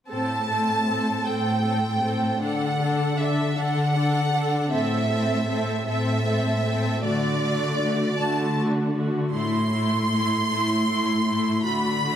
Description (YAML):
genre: cinematic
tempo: 52 BPM (dotted quarters)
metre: 6/8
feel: straight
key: A dorian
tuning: A4 = 440 Hz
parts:
  - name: rich symphonic violin section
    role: melody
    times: 0.1-12.2 s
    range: D5 to C6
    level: -26 LUFS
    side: right 2 dB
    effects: none
  - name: rich symphonic viola section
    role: accompaniment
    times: 0.1-12.2 s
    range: A3 to A4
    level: -27 LUFS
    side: equal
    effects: none
  - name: warm symphonic cello section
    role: bass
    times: 0.1-12.2 s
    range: A2 to D3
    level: -25 LUFS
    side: left 1 dB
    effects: none
room: moderate scoring stage reverb, RT60 2.0 s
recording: none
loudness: -21 LUFS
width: side -10 dB against mid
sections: 0.1-12.2 A section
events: none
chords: 0.1 Am; 2.4 D; 4.7 Am; 7.0 D; 9.3 Am; 11.6 D